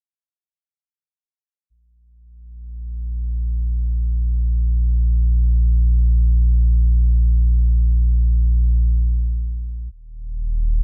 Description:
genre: ambient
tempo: free time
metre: none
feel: none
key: unclear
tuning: A4 = 439 Hz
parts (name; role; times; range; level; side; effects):
- warm sub bass; bass; 1.7-10.8 s; Eb1 to Bb1; -19 LUFS; equal; none
room: little or no reverb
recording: none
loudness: -19 LUFS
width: mono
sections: 1.7-10.8 A section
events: fade-in on sub bass 1.7-10.8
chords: none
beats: free time

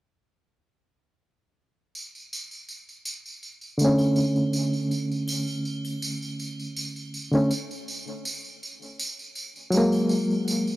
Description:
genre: trip hop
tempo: 81 BPM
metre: 4/4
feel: straight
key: unclear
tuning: A4 = 436 Hz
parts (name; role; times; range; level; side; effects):
- tambourine and triangle; percussion; 1.9-10.8 s; none; -34 LUFS; right 2 dB; none
- barky reed electric piano; accompaniment; 3.8-10.8 s; D3 to C#4; -23 LUFS; equal; overdrive, fast tremolo, low-pass filter, tape echo
room: light reverb, studio ambience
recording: dry, gritty hardware recording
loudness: -24 LUFS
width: side -17 dB against mid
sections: 2.0-10.8 A section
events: filter sweep on reed electric piano 2.0-10.8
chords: 2.0 Aadd11/D; 7.9 F#add9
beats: | 1.95 2.69 3.43 4.17 | 4.91 5.66 6.39 7.14 | 7.88 8.62 9.36 10.10

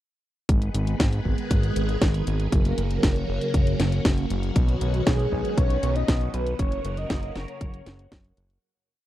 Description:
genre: italo disco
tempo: 118 BPM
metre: 4/4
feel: straight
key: F# major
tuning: A4 = 440 Hz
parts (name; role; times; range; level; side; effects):
- phased string machine; sustained chords; 0.5-8.6 s; C#3 to B4; -30 LUFS; equal; ensemble chorus, phaser
- fat analog bass; bass; 0.5-8.6 s; F#1 to B1; -26 LUFS; equal; tube saturation
- electronic kick drum; drums; 0.5-8.2 s; none; -24 LUFS; equal; none
- house drum kit; drums; 0.5-8.6 s; hi-hat, snare drum; -27 LUFS; equal; none
- wide unison lead; melody; 5.1-8.4 s; G#4 to D#5; -30 LUFS; equal; wide subtle chorus, tape echo
room: little or no reverb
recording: dry, close 1970s-style studio recording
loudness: -21 LUFS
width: side -14 dB against mid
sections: 0.5-8.6 verse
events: fade-out 5.9-8.6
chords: 0.5 G#m; 2.5 F#; 4.6 Badd9; 6.6 F#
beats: | 0.49 1.00 1.51 2.02 | 2.52 3.03 3.54 4.05 | 4.56 5.07 5.58 6.08 | 6.59 7.10 7.61 8.12

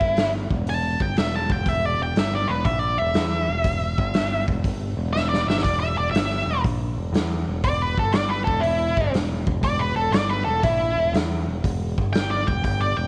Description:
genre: blues rock power trio and southern rock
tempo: 120 BPM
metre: 4/4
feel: swing 68% on 8ths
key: E minor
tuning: A4 = 442 Hz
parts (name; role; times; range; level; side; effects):
- octave-fuzz lead guitar; melody; 0.0-13.1 s; E4 to A5; -26 LUFS; equal; distortion, slapback echo
- growling picked electric bass; bass; 0.0-13.1 s; E1 to E2; -28 LUFS; equal; overdrive
- raw garage drum kit; drums; 0.0-12.8 s; hi-hat, kick drum, snare drum; -27 LUFS; equal; none
room: light reverb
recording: none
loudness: -23 LUFS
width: mono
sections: 0.0-13.1 A section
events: lead electric guitar solo 0.0-13.1; drum fill 5.1-5.6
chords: 0.4 Em; 3.9 Em/G; 4.4 Em; 7.9 Gadd9; 8.4 Em; 11.9 G5; 12.4 Em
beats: 0.16 0.66 1.16 | 1.66 2.15 2.65 3.15 | 3.65 4.15 4.64 5.14 | 5.64 6.14 6.64 7.14 | 7.63 8.13 8.63 9.13 | 9.63 10.13 10.63 11.13 | 11.63 12.13 12.63

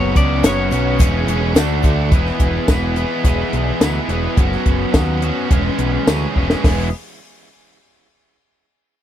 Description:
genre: indie rock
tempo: 106 BPM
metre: 4/4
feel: straight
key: E mixolydian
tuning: A4 = 440 Hz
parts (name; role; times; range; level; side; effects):
- twelve-string electric guitar; melody; 0.0-1.5 s; C#5 to D5; -24 LUFS; left 1 dB; tape echo
- tonewheel organ; sustained chords; 0.0-2.1 s; G#4 to D6; -31 LUFS; equal; none
- biting overdriven guitar; riff; 0.0-6.9 s; D3 to G#4; -23 LUFS; right 14 dB; analog chorus
- overdriven electric guitar; riff; 0.0-6.9 s; D3 to G#4; -23 LUFS; left 11 dB; none
- growling picked electric bass; bass; 0.0-6.9 s; E1 to D#2; -20 LUFS; equal; overdrive
- compact cocktail drum kit; drums; 0.2-6.8 s; hi-hat, kick drum, snare drum, tambourine; -15 LUFS; equal; none
- tube shaker; percussion; 0.2-2.0 s; none; -39 LUFS; left 14 dB; none
room: little or no reverb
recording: dry, close 1970s-style studio recording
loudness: -14 LUFS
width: side -11 dB against mid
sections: 0.0-2.1 A section; 2.1-6.6 B section; 6.6-8.9 C section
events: drum fill 6.4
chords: 0.0 F#sus4; 1.0 C#m/E; 1.6 D; 2.1 E; 4.4 F#sus4; 5.5 C#m/E; 6.6 E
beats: 0.44 1.00 1.56 | 2.12 2.69 3.25 3.81 | 4.38 4.95 5.51 6.08 | 6.64

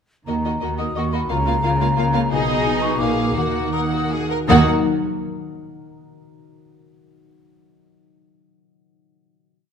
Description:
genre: classical, dramatic, fast romantic movement for symphony orchestra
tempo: 158-179 BPM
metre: 3/4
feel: rubato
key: Eb minor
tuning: A4 = 441 Hz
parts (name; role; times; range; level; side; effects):
- warm symphonic violin section; melody; 0.3-4.7 s; Eb5 to Gb5; -28 LUFS; left 1 dB; none
- mellow hollow concert flute; second line; 0.3-4.7 s; Ab5 to Eb6; -25 LUFS; equal; none
- warm symphonic violin section; second line; 0.3-4.7 s; F4 to Bb4; -27 LUFS; left 3 dB; none
- rich symphonic viola section; accompaniment; 0.3-4.7 s; Bb3 to Eb4; -26 LUFS; right 3 dB; none
- concert harp; arpeggios; 0.3-5.6 s; Bb2 to Eb5; -24 LUFS; left 6 dB; none
- warm studio double bass section; bass; 0.3-4.7 s; Bb1 to Eb2; -24 LUFS; right 3 dB; none
- warm symphonic cello section; bass; 0.3-4.7 s; Bb2 to Eb3; -26 LUFS; right 3 dB; none
room: moderate recital hall reverb, RT60 1.6 s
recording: none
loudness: -17 LUFS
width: side -7 dB against mid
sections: 0.3-4.5 A section; 4.5-5.6 final chord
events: slowing down 1.8-4.5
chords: 0.3 Ebm; 1.3 Bbm/Db; 2.3 Abm/Cb; 3.0 Bb7; 3.4 Ebm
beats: | 0.28 0.62 0.97 | 1.30 1.64 1.98 | 2.32 2.66 3.01 | 3.37 3.75 4.12 | 4.50 4.86 5.23

